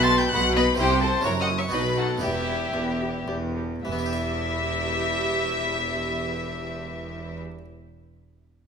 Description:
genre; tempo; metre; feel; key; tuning
classical, baroque-style concerto movement with solo episodes; 103-133 BPM; 3/4; straight; E minor; A4 = 439 Hz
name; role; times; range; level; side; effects
rich chamber violin section; melody; 0.0-7.4 s; E5 to A6; -29 LUFS; left 3 dB; none
warm violin; melody; 0.0-7.4 s; G4 to C6; -29 LUFS; left 2 dB; none
rich chamber violin section; second line; 0.0-7.4 s; E4 to A5; -32 LUFS; left 3 dB; none
harpsichord; accompaniment; 0.0-7.7 s; E2 to E5; -32 LUFS; equal; none
rich studio double bass section; bass; 0.0-7.4 s; E1 to C2; -32 LUFS; right 3 dB; none
rich symphonic cello section; bass; 0.0-7.4 s; E2 to C3; -29 LUFS; right 1 dB; none
rich chamber viola section; accompaniment; 0.1-7.4 s; B3 to G4; -33 LUFS; right 2 dB; none
room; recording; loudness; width
moderate recital hall reverb, RT60 1.8 s; minimal, uncompressed stereo recording; -22 LUFS; side -6 dB against mid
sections
0.0-3.9 A section; 3.9-7.3 B section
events
slowing down 0.1-3.9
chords
0.0 B7(no3); 0.8 C; 1.3 F#5; 1.7 B; 2.2 Em

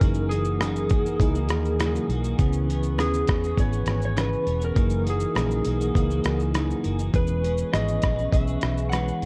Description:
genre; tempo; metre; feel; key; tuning
indie pop, bedroom pop; 101 BPM; 4/4; straight; unclear; A4 = 439 Hz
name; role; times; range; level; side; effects
electric slide guitar; melody; 0.0-9.3 s; G#4 to F#5; -32 LUFS; equal; lush chorus, tape echo
clean electric guitar; accompaniment; 0.0-9.3 s; F#2 to B4; -34 LUFS; equal; analog chorus, vibrato effect
tine electric piano; accompaniment; 0.0-9.3 s; E3 to A#4; -33 LUFS; equal; cassette tape
hollow soft pad; sustained chords; 0.0-9.3 s; A#4 to D#6; -41 LUFS; equal; chorus
vintage muted fingered electric bass; bass; 0.0-9.3 s; E1 to E2; -29 LUFS; equal; none
dusty soul sampler-style drum kit; drums; 0.0-9.3 s; hi-hat, kick drum, rim click, shaker; -28 LUFS; equal; none
group handclap; percussion; 0.6-9.1 s; none; -47 LUFS; equal; none
room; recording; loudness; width
light reverb; worn, warbling old tape, cassette tape, warbly pitch drift; -24 LUFS; mono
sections
0.0-9.3 A section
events
none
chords
0.0 F#13; 2.4 C#m7; 4.8 F#13; 7.1 E6

